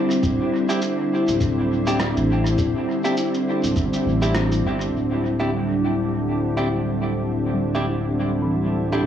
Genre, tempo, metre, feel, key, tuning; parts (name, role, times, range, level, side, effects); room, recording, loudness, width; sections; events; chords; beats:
ambient dub; 102 BPM; 4/4; swing 58% on 16ths; A4 = 440 Hz
soft additive organ-like pad; sustained chords; 0.0-9.1 s; D3 to A4; -22 LUFS; equal; ensemble chorus, built-in reverb, cassette tape
electronic shaker and rim click; drums; 0.1-4.9 s; -31 LUFS; right 1 dB; cassette tape, dub echo
warm sub bass; bass; 0.2-9.1 s; D1 to A1; -25 LUFS; equal
electronic kick drum; drums; 0.2-3.9 s; -25 LUFS; equal; cassette tape
clean electric guitar; stabs; 0.7-9.0 s; C4 to G4; -28 LUFS; right 1 dB; cassette tape, dub echo
kalimba; arpeggios; 7.5-9.1 s; C3 to G3; -28 LUFS; equal; low-pass filter, cassette tape, tape echo
moderate spring reverb, RT60 1.8 s, digital ambience; home recording on cassette, small room reverb; -19 LUFS; side -9 dB against mid
0.0-4.9 A section; 4.9-9.1 B section
0.0 D9sus4
| 0.23 0.82 1.41 1.99 | 2.58 3.17 3.76 4.35 | 4.93 5.52 6.11 6.70 | 7.29 7.88 8.46 9.05